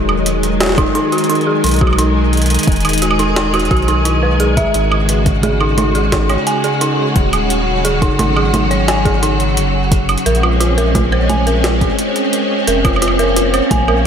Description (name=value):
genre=IDM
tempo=87 BPM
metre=4/4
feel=straight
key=unclear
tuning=A4 = 440 Hz
part: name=soft string machine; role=sustained chords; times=0.0-14.1 s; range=Db3 to G#4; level=-17 LUFS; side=equal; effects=ensemble chorus, sidechain pumping
part: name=warm sub bass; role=bass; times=0.0-14.1 s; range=Eb1 to B1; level=-17 LUFS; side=equal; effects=none
part: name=jungle sampler-style drum kit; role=drums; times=0.1-14.0 s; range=congas, hi-hat, snare drum, woodblock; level=-20 LUFS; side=right 2 dB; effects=overdrive, digital delay
part: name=dark detuned synth bell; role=arpeggios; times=0.6-13.9 s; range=D#4 to Ab5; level=-18 LUFS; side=right 1 dB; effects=chorus, vintage 12-bit sampler grit, tape echo, slapback echo
part: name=electronic kick drum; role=drums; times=0.8-13.8 s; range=none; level=-17 LUFS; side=equal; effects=none
room=moderate lush hall reverb, RT60 2.6 s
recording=big arena sound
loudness=-12 LUFS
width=side -8 dB against mid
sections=0.0-14.1 A section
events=none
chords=0.0 Emaj9; 4.7 Ab7sus4; 10.3 Bbm9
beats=0.61 1.30 | 1.99 2.67 3.37 4.05 | 4.74 5.43 6.12 6.81 | 7.50 8.19 8.88 9.57 | 10.26 10.95 11.64 12.33 | 13.02 13.71